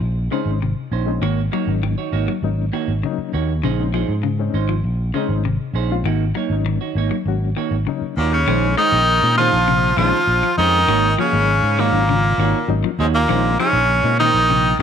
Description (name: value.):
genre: afrobeat.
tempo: 99 BPM.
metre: 4/4.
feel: straight.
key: Bb minor.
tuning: A4 = 444 Hz.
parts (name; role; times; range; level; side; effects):
clean electric guitar; arpeggios; 0.0-14.8 s; C3 to Ab3; -26 LUFS; left 11 dB; none.
fingered electric bass; bass; 0.0-14.8 s; Ab1 to Bb2; -20 LUFS; equal; none.
reed electric piano; accompaniment; 0.3-14.8 s; Gb3 to Gb4; -27 LUFS; left 13 dB; overdrive, fast tremolo.
clean electric guitar; stabs; 0.3-14.4 s; Bb3 to Db5; -26 LUFS; right 13 dB; none.
edgy tenor saxophone; melody; 8.2-14.8 s; Ab3 to F4; -17 LUFS; equal; slapback echo.
raspy baritone saxophone; second line; 8.2-14.8 s; Ab2 to F3; -25 LUFS; left 12 dB; none.
warm trombone; second line; 8.2-14.8 s; Ab2 to F3; -26 LUFS; right 12 dB; none.
room: light reverb, small room reverb.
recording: 1960s-style stereo with parts hard left and right.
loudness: -16 LUFS.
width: side -8 dB against mid.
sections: 0.0-8.5 A section; 8.5-14.8 B section.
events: none.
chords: 0.0 Bbm11; 1.2 Ab9sus4; 3.6 Bbm11; 6.1 Ab9sus4; 8.5 Bbm11; 10.9 Ab9sus4; 13.3 Bbm11.